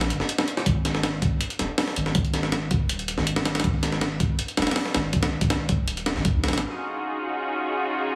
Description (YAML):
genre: drum and bass, jungle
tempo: 161 BPM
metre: 4/4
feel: straight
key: unclear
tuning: A4 = 439 Hz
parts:
  - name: soft dub sub bass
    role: bass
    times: 0.0-6.6 s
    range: Eb1 to Eb2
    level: -30 LUFS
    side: equal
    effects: none
  - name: breakbeat sampler-style drum kit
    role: drums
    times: 0.0-6.6 s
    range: hi-hat, kick drum, snare drum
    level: -26 LUFS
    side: equal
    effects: none
  - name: rich symphonic string section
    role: sustained chords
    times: 6.6-8.2 s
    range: Db4 to Ab4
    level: -28 LUFS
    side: equal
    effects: vintage 12-bit sampler grit, low-pass filter
room: moderate echo chamber reverb, RT60 1.6 s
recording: heavily compressed radio sound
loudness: -25 LUFS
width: mono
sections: 0.0-6.6 A section; 6.6-8.2 B section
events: none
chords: 0.0 Ebm (rootless); 0.7 Ab5; 6.6 Ebm11